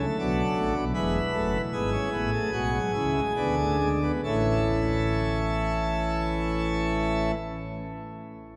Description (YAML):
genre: classical, baroque-style 4-part fugue for pipe organ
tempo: 67-80 BPM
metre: 4/4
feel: straight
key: A major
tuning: A4 = 441 Hz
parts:
  - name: pipe organ, plenum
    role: solo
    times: 0.0-7.3 s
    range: E1 to B4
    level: -27 LUFS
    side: equal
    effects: none
room: wet cathedral reverb, RT60 4.7 s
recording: none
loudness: -27 LUFS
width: mono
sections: 0.0-4.2 A section; 4.2-7.8 B section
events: slowing down 0.0-4.2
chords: 0.0 D; 0.9 E7; 4.2 A